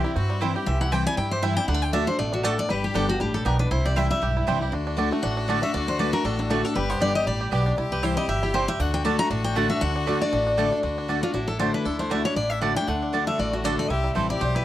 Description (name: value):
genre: bluegrass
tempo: 236 BPM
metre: 4/4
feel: swing 56% on 8ths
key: D mixolydian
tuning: A4 = 441 Hz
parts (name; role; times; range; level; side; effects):
- picked steel-string acoustic guitar; melody; 0.0-14.6 s; D4 to Bb5; -27 LUFS; left 2 dB; none
- clear fiddle; second line; 0.0-14.6 s; D4 to A4; -33 LUFS; left 4 dB; none
- picked steel-string acoustic guitar; accompaniment; 0.0-14.6 s; G2 to G4; -28 LUFS; left 2 dB; none
- bluegrass banjo; arpeggios; 0.0-14.6 s; E3 to G4; -32 LUFS; right 2 dB; none
- upright bass; bass; 0.2-14.6 s; G1 to G2; -28 LUFS; right 1 dB; none
- mandolin; stabs; 0.4-14.3 s; A3 to A5; -27 LUFS; right 8 dB; none
room: light reverb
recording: dry, close 1970s-style studio recording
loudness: -22 LUFS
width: side -13 dB against mid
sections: 0.0-2.7 A section; 2.7-10.8 A section; 10.8-14.6 B section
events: steel-string acoustic guitar solo 0.0-10.8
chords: 0.0 C; 1.7 D; 2.7 G; 3.7 C; 4.7 D; 6.8 G; 7.8 C; 8.8 D; 13.9 C